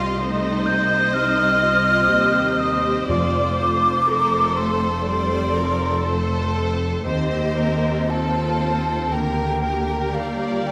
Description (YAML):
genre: classical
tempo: 60 BPM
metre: 4/4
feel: rubato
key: unclear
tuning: A4 = 438 Hz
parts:
  - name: clear studio violin section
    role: melody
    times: 0.0-10.7 s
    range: A4 to Eb5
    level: -34 LUFS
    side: equal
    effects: none
  - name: mellow hollow concert flute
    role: second line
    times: 0.0-10.7 s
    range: Eb5 to G6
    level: -24 LUFS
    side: equal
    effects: none
  - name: rich studio violin section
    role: second line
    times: 0.0-10.7 s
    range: A4 to F5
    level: -30 LUFS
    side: equal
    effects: none
  - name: rich studio viola section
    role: accompaniment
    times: 0.0-10.7 s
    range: F3 to A4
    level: -28 LUFS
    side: equal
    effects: none
  - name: concert harp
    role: arpeggios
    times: 0.0-10.7 s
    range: C3 to D5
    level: -31 LUFS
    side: equal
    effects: none
  - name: clear studio double bass section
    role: bass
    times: 0.0-10.7 s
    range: F1 to Eb2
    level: -31 LUFS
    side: equal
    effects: none
  - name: rich studio cello section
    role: bass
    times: 0.0-10.7 s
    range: D2 to C3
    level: -31 LUFS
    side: equal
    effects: none
  - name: timpani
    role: percussion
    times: 3.1-4.5 s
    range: F2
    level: -31 LUFS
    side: equal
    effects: none
room: wet scoring stage reverb, RT60 1.8 s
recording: none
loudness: -20 LUFS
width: mono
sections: 0.0-10.7 A section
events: none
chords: 0.0 Cm; 3.1 F; 7.1 F7/Eb; 9.1 Bb/D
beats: 0.18 1.15 2.11 | 3.10 4.09 5.07 6.06 | 7.05 8.11 9.12 10.14